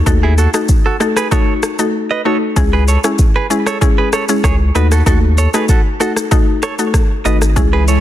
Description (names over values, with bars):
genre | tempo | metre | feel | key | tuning
afrobeats | 96 BPM | 4/4 | straight | unclear | A4 = 439 Hz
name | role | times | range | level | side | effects
mallet-like synth pluck | accompaniment | 0.0-7.7 s | G#3 to A4 | -17 LUFS | left 2 dB | chorus
saturated sub bass | bass | 0.0-8.0 s | G#1 to D#2 | -12 LUFS | equal | none
afro-pop drum kit | drums | 0.1-8.0 s | kick drum, rim click, shaker | -14 LUFS | equal | soft clipping on snare
direct-recorded clean electric guitar | riff | 0.2-8.0 s | E4 to D#5 | -20 LUFS | right 6 dB | digital delay
glassy FM pad | sustained chords | 7.7-8.0 s | C#3 to G#4 | -19 LUFS | right 1 dB | ensemble chorus, built-in reverb, phaser
room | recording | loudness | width
light reverb, digital ambience | dense, heavily limited modern master | -11 LUFS | side -12 dB against mid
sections
0.0-2.6 A section; 2.6-8.0 B section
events
none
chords
0.0 D#dim; 2.6 C#m; 4.8 D#dim